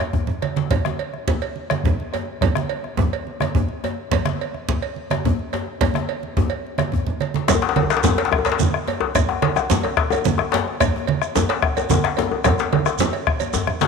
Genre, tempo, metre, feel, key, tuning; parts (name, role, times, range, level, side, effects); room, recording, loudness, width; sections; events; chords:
west african traditional, West African drum ensemble; 143 BPM (dotted quarters); 12/8; straight
djembe; percussion; 0.0-13.9 s; -26 LUFS; left 6 dB
bombo; percussion; 0.1-13.8 s; -25 LUFS; left 4 dB
congas; percussion; 0.1-13.9 s; -24 LUFS; right 7 dB
cowbell; percussion; 0.4-13.5 s; -28 LUFS; right 10 dB
djembe; percussion; 7.5-13.9 s; -22 LUFS; left 8 dB
shekere; percussion; 7.5-13.9 s; -30 LUFS; right 6 dB
moderate plate reverb, RT60 3.4 s; 1960s-style stereo with parts hard left and right; -18 LUFS; side -5 dB against mid
0.0-7.5 A section; 7.5-13.9 B section
speeding up 0.0-13.9; drum fill 0.0-0.7, 6.9-7.5, 13.5-13.9